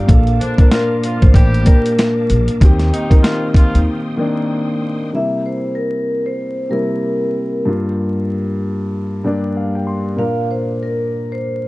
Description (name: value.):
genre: hip hop, boom-bap hip-hop.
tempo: 95 BPM.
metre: 4/4.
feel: swing 58% on 16ths.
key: unclear.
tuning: A4 = 440 Hz.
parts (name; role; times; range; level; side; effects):
dark grand piano; accompaniment; 0.0-11.7 s; G2 to C6; -19 LUFS; left 1 dB; cassette tape, high-pass filter, low-pass filter.
bright tonewheel organ; sustained chords; 0.0-5.1 s; Bb3 to Eb6; -32 LUFS; equal; chorus vibrato, fast rotary speaker, high-pass filter, low-pass filter.
vibraphone with medium mallets; melody; 0.1-11.7 s; Bb4 to F5; -22 LUFS; equal; high-pass filter, low-pass filter, digital delay.
upright bass; bass; 0.1-3.9 s; A1 to Eb2; -15 LUFS; equal; none.
boom bap sampler-style drum kit; drums; 0.1-3.9 s; hi-hat, kick drum, snare drum; -10 LUFS; equal; none.
bright horn section; stabs; 0.4-3.8 s; D3 to G4; -27 LUFS; right 1 dB; high-pass filter, low-pass filter, digital delay.
room: light reverb.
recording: dark, warm production, vinyl crackle, nothing above 10.5 kHz.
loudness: -14 LUFS.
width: side -20 dB against mid.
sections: 0.0-5.1 A section; 5.1-11.7 B section.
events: break 3.9-5.1; grand piano fill 8.9-10.2.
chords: 0.1 Bbmaj7; 2.6 Eb6; 5.1 C7; 7.7 Gm7; 10.2 Bb.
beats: | 0.09 0.72 1.35 1.98 | 2.61 3.25 3.88 4.51 | 5.14 5.77 6.40 7.03 | 7.67 8.30 8.93 9.56 | 10.19 10.82 11.46.